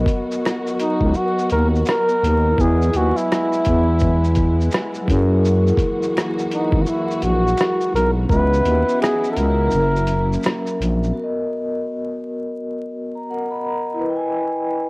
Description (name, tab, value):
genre	lo-fi hip hop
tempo	84 BPM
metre	4/4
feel	swing 58% on 16ths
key	B major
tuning	A4 = 440 Hz
part	vibraphone with soft mallets	accompaniment	0.0-14.9 s	F#3 to B5	-23 LUFS	left 1 dB	cassette tape, low-pass filter
part	rich studio string section	sustained chords	0.0-11.1 s	C#3 to A#4	-27 LUFS	equal	low-pass filter, cassette tape
part	growling FM bass	bass	0.0-11.1 s	F#1 to F#2	-17 LUFS	equal	tube saturation
part	lo-fi sampler-style drum kit	drums	0.1-11.2 s	hi-hat, kick drum, rim click, shaker	-23 LUFS	equal	overdrive
part	finger snaps	percussion	0.5-10.6 s	none	-38 LUFS	right 2 dB	none
part	breathy flugelhorn	melody	0.8-10.8 s	D#4 to B4	-20 LUFS	equal	low-pass filter, cassette tape
room	light reverb, studio reverb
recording	home recording on cassette, vinyl crackle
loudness	-16 LUFS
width	side -27 dB against mid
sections	0.0-11.2 A section; 11.2-14.9 B section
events	break 9.7-11.2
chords	0.0 Bmaj7; 2.6 Emaj7; 5.1 F#9; 8.3 C#m11; 9.7 F#7; 11.2 Bmaj7; 14.0 Emaj7